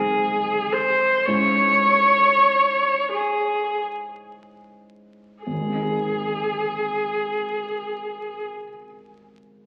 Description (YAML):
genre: classical, romantic duo for viola and grand piano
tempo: 23-38 BPM (dotted quarters)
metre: 6/8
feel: rubato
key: Ab major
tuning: A4 = 440 Hz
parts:
  - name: rich viola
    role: melody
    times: 0.0-8.4 s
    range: Ab4 to Db5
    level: -22 LUFS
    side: equal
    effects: none
  - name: warm grand piano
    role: accompaniment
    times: 0.0-9.7 s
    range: Ab1 to Ab4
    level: -32 LUFS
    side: equal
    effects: none
room: wet concert hall reverb, RT60 1.9 s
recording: very old 78 rpm record, vinyl crackle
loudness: -21 LUFS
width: mono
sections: 0.0-5.4 A section; 5.4-9.7 B section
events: slowing down 0.0-5.4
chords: 0.0 Ab; 1.3 Dbm/Ab; 5.4 Ab